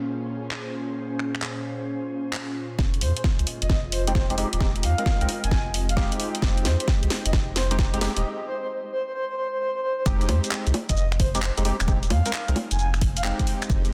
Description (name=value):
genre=UK garage, two-step garage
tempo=132 BPM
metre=4/4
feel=swing 67% on 16ths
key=F minor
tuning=A4 = 441 Hz
part: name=ethereal airy pad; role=sustained chords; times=0.0-13.9 s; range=Bb2 to C5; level=-41 LUFS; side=equal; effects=ensemble chorus, built-in reverb, phaser, sidechain pumping
part: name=airy breathy pad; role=texture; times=0.0-8.2 s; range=Bb3 to Eb5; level=-37 LUFS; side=equal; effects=chorus, sidechain pumping
part: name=garage drum kit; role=drums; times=0.5-13.9 s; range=bongos, finger snaps, handclaps, hi-hat, shaker, snare drum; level=-32 LUFS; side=equal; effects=soft clipping on snare, high-pass filter on snare, studio reverb, high-pass filter on hats, high-pass filter on perc
part: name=saturated sub bass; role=bass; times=2.8-13.9 s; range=Eb1 to F2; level=-27 LUFS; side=equal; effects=none
part: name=electronic kick drum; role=drums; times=2.8-13.8 s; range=none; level=-26 LUFS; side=equal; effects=studio reverb
part: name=breathy flute-like synth lead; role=melody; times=3.0-13.3 s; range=C5 to Ab5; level=-33 LUFS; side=equal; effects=subtle chorus, delay
part: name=percussive organ stab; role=stabs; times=4.1-13.9 s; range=Ab3 to Bb4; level=-33 LUFS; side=equal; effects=ensemble chorus, delay
room=moderate lush hall reverb, RT60 1.8 s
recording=dense, heavily limited modern master, low-pass filter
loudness=-25 LUFS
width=mono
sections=0.0-2.8 A section; 2.8-10.1 B section; 10.1-13.9 C section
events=build-up 2.8-10.1; drum fill 2.8-8.2; filter sweep on synth stab 2.8-10.1; break 8.2-10.1; drop 10.1-13.9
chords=0.0 Bbm7; 2.8 Fm7; 8.2 N.C.; 10.1 Fm7